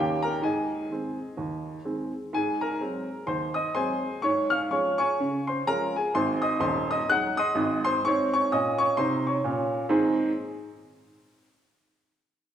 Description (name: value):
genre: jazz, stride piano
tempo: 126 BPM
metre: 4/4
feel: swing 59% on 8ths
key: Ab major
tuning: A4 = 443 Hz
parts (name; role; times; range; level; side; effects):
- warm baby grand piano; solo; 0.0-10.3 s; Eb1 to Gb6; -24 LUFS; equal; none
room: wet recital hall reverb, RT60 1.7 s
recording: recorded in a church or concert hall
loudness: -24 LUFS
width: side -9 dB against mid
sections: 0.0-2.3 A section; 2.3-9.9 B section; 9.9-11.8 C section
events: none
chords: 0.4 Ab; 2.3 Ab7; 4.2 Db/Ab; 6.1 Ab7; 8.0 Db5/Ab; 9.9 Ab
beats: | 0.42 0.90 1.37 1.85 | 2.32 2.80 3.27 3.75 | 4.23 4.70 5.18 5.66 | 6.13 6.61 7.08 7.56 | 8.04 8.51 8.99 9.46 | 9.94